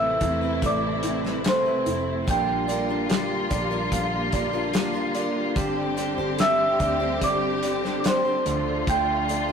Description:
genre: pop ballad.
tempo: 73 BPM.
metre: 4/4.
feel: straight.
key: unclear.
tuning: A4 = 440 Hz.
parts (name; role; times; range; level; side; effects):
celesta; melody; 0.0-9.5 s; C5 to G6; -24 LUFS; right 1 dB; none.
felt-muted upright piano; accompaniment; 0.0-9.5 s; D3 to F5; -31 LUFS; right 1 dB; none.
rich studio string section; sustained chords; 0.0-9.5 s; C3 to G4; -28 LUFS; equal; none.
picked steel-string acoustic guitar; arpeggios; 0.0-9.5 s; Bb2 to C5; -32 LUFS; left 3 dB; none.
vintage muted fingered electric bass; bass; 0.0-9.5 s; F1 to E2; -34 LUFS; equal; none.
loose indie drum kit; drums; 0.2-9.5 s; hi-hat, kick drum, snare drum; -28 LUFS; left 1 dB; none.
room: wet stone room reverb, RT60 1.4 s.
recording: rough rehearsal-room recording, warm saturation.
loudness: -22 LUFS.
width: side -6 dB against mid.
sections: 0.0-9.5 A section.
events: none.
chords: 0.0 Amadd9; 2.3 Bb6; 5.6 Gsus4; 8.5 Dm.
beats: 0.62 1.45 | 2.27 3.10 3.92 4.74 | 5.56 6.39 7.21 8.05 | 8.87.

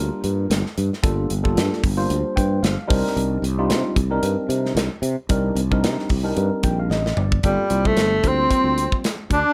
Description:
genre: electric jazz fusion.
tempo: 112 BPM.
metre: 4/4.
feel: swing 55% on 16ths.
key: G minor.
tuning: A4 = 440 Hz.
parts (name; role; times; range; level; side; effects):
tine electric piano; accompaniment; 0.0-9.0 s; G3 to G5; -27 LUFS; equal; subtle chorus.
sustaining fretless electric bass; bass; 0.0-9.4 s; G1 to C3; -25 LUFS; equal; none.
modern studio drum kit; drums; 0.2-9.4 s; hi-hat, kick drum, snare drum, toms; -25 LUFS; equal; none.
bright tenor saxophone; melody; 7.5-9.5 s; G3 to D4; -22 LUFS; equal; plate reverb.
warm bass clarinet; second line; 7.5-9.5 s; G3 to D4; -27 LUFS; equal; none.
room: light reverb.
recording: none.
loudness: -21 LUFS.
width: mono.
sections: 0.0-7.4 A section; 7.4-9.5 B section.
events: tine electric piano fill 2.1-3.2, 6.4-7.4; drum fill 6.9-7.4.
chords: 0.0 Gm9; 2.9 Cm9; 7.4 Gm11.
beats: 0.50 | 1.03 1.57 2.10 2.64 | 3.17 3.70 4.24 4.77 | 5.30 5.84 6.37 6.91 | 7.44 7.97 8.51 9.04.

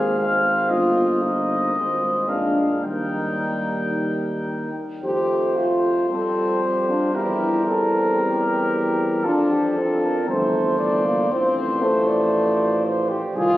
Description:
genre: classical, brass quintet.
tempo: 115 BPM.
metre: 4/4.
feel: rubato.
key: Eb major, F major from 5.0 s.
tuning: A4 = 439 Hz.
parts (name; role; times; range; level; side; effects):
mellow trumpet; melody; 0.0-13.6 s; Ab4 to G5; -24 LUFS; left 2 dB; none.
mellow flugelhorn; second line; 0.0-13.6 s; F4 to D5; -26 LUFS; right 3 dB; none.
clear French horn; accompaniment; 0.0-13.6 s; A3 to Ab4; -24 LUFS; left 1 dB; none.
clear trombone; accompaniment; 0.0-13.6 s; Eb3 to C4; -30 LUFS; right 1 dB; none.
warm bass trombone; bass; 0.0-13.6 s; G1 to F2; -26 LUFS; equal; none.
room: wet cathedral reverb, RT60 4.2 s.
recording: recorded on a phone in the room, studio ambience, compression.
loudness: -19 LUFS.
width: side -15 dB against mid.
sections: 0.0-5.0 A section; 5.0-13.6 B section.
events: none.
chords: 0.0 Bb5/Ab; 0.7 Eb/G; 1.8 Ab; 2.3 Bb7; 2.8 Eb; 5.0 F; 6.1 F69; 7.2 C7/E; 9.2 F; 10.3 C/G; 11.3 F/A.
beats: 0.19 | 0.71 1.23 1.76 2.30 | 2.85 3.40 3.95 4.49 | 5.04 5.58 6.10 6.62 | 7.15 7.67 8.20 8.72 | 9.24 9.76 10.28 10.80 | 11.31 11.82 12.33 12.85 | 13.36.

